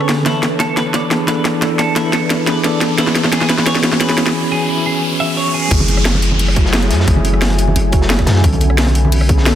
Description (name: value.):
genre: liquid drum and bass.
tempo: 176 BPM.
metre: 4/4.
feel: straight.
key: F# minor.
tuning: A4 = 440 Hz.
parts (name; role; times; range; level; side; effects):
mellow tine electric piano; accompaniment; 0.0-9.6 s; D3 to A4; -18 LUFS; equal; medium stereo tremolo, dub echo.
shimmering ambient pad; sustained chords; 0.0-9.6 s; D3 to B5; -26 LUFS; left 1 dB; chorus, built-in reverb, phaser, vintage 12-bit sampler grit.
twelve-string electric guitar; arpeggios; 0.0-5.7 s; E4 to E5; -21 LUFS; right 1 dB; tremolo, low-pass filter, dub echo.
drum and bass drum kit; drums; 0.0-9.5 s; crash cymbal, hi-hat, rim click, snare drum; -17 LUFS; equal; overdrive, studio reverb.
riser and downlifter; sound effects; 0.0-8.4 s; none; -24 LUFS; equal; none.
long sustained 808-style bass; bass; 5.7-9.6 s; F#1 to F#2; -14 LUFS; equal; none.
crunchy breakbeat drum kit; drums; 5.7-9.5 s; hi-hat, snare drum; -24 LUFS; equal; high-pass filter on hats, studio reverb, high-pass filter on snare, high-pass filter on room.
electronic kick drum; drums; 5.7-9.4 s; none; -14 LUFS; equal; overdrive, studio reverb.
congas; percussion; 5.8-9.1 s; none; -22 LUFS; right 3 dB; none.
room: light reverb, studio reverb.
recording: dense, heavily limited modern master.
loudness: -12 LUFS.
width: side -11 dB against mid.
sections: 0.0-5.7 A section; 5.7-9.6 B section.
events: build-up 0.0-5.7; drum fill 0.0-4.3; riser 0.0-5.7; break 4.3-5.7; drop 5.7-9.6.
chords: 0.3 E7sus4; 3.0 C#m7; 5.7 F#m9; 8.4 Bm9.